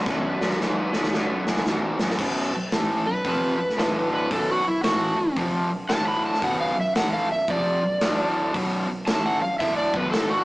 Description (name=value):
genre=blues rock power trio and southern rock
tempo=113 BPM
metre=4/4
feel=swing 63% on 8ths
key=B minor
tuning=A4 = 440 Hz
part: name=overdriven slide guitar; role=melody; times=0.0-10.4 s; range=E4 to B5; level=-25 LUFS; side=equal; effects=none
part: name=overdriven tonewheel organ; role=sustained chords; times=0.0-2.2 s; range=D4 to E5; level=-32 LUFS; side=right 1 dB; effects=slow rotary speaker, chorus vibrato
part: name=cranked stack guitar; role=riff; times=0.0-10.4 s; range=B1 to A3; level=-25 LUFS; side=equal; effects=overdrive
part: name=fuzz fingered electric bass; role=bass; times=0.1-10.4 s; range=B0 to A1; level=-35 LUFS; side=equal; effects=overdrive
part: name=big rock drum kit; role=drums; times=0.1-10.3 s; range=crash cymbal, hi-hat, kick drum, snare drum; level=-28 LUFS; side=equal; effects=none
room=moderate stone room reverb, RT60 1.0 s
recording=rough rehearsal-room recording, small speaker sound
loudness=-21 LUFS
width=side -20 dB against mid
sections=0.0-2.2 A section; 2.2-10.4 B section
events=drum fill 0.1-2.2; electric slide guitar solo 2.2-10.4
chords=0.0 Bm7; 2.2 B5; 3.8 D5; 4.3 B5; 5.9 D5; 6.4 Bm; 8.0 D5; 8.5 Bm